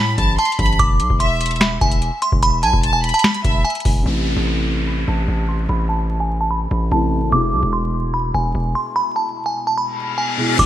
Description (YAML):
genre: hip hop, trap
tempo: 147 BPM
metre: 4/4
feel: half-time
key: A harmonic minor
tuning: A4 = 441 Hz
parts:
  - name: delicate synth tine bell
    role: melody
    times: 0.0-10.7 s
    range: G#5 to D6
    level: -20 LUFS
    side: right 1 dB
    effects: chorus, low-pass filter
  - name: rich studio violin section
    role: second line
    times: 0.0-3.6 s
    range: E5 to C6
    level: -24 LUFS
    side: equal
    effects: ping-pong delay
  - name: distorted 808-style bass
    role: bass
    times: 0.0-10.7 s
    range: E1 to A2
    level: -20 LUFS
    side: equal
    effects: distortion
  - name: booming analog drum machine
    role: drums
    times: 0.2-4.0, 10.6-10.7 s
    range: crash cymbal, finger snaps, hi-hat, kick drum, snare drum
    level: -18 LUFS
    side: equal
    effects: none
  - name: dark baby grand piano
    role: accompaniment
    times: 4.0-10.6 s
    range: B2 to E4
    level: -25 LUFS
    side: equal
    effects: wide subtle chorus, low-pass filter
  - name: downlifter and reverse cymbal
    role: sound effects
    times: 4.1-7.3, 10.0-10.6 s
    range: none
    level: -25 LUFS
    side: left 4 dB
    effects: none
room: light reverb, digital ambience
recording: bright 1980s-style digital production, vinyl crackle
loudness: -16 LUFS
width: side -12 dB against mid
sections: 0.0-4.1 A section; 4.1-10.6 B section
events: filter sweep 4.1-10.6; reverse cymbal 10.0-10.6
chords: 0.0 Am; 0.8 E; 4.1 Am; 7.3 E